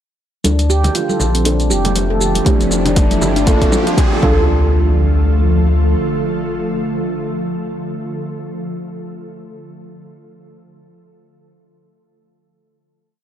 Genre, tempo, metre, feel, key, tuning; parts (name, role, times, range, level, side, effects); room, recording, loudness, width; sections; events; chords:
afro house; 119 BPM; 4/4; swing 58% on 16ths; D minor; A4 = 440 Hz
ethereal airy pad; sustained chords; 0.8-8.2 s; D3 to A4; -21 LUFS; equal; ensemble chorus, built-in reverb, sidechain pumping
handpan; arpeggios; 0.4-4.7 s; A3 to A4; -20 LUFS; equal; sidechain pumping, tape echo
deep mellow chord stab; stabs; 0.4-8.2 s; A3 to A4; -23 LUFS; right 2 dB; chorus, sidechain pumping, tape echo
warm sub bass; bass; 0.4-6.0 s; F1 to D2; -16 LUFS; equal; sidechain pumping
deep house drum kit; drums; 0.4-4.2 s; hi-hat, shaker, toms; -23 LUFS; equal; high-pass filter on hats, high-pass filter on toms, high-pass filter on perc, high-pass filter on room
congas; percussion; 0.4-4.5 s; -24 LUFS; right 2 dB
riser and impact; sound effects; 2.0-8.2 s; -25 LUFS; equal
electronic kick drum; drums; 2.5-4.3 s; -14 LUFS; equal
little or no reverb; dry, gritty hardware recording; -13 LUFS; side -10 dB against mid
0.4-4.5 build; 4.5-8.5 final hit
build-up 0.4-4.5; drum fill 0.4-4.5; filter sweep on synth stab 0.4-4.5; filter sweep on ambient pad 0.4-4.5; riser 2.0-4.5
0.4 Dm; 1.5 Bbmaj7; 2.5 Fmaj7; 3.5 Gm7; 4.2 Dm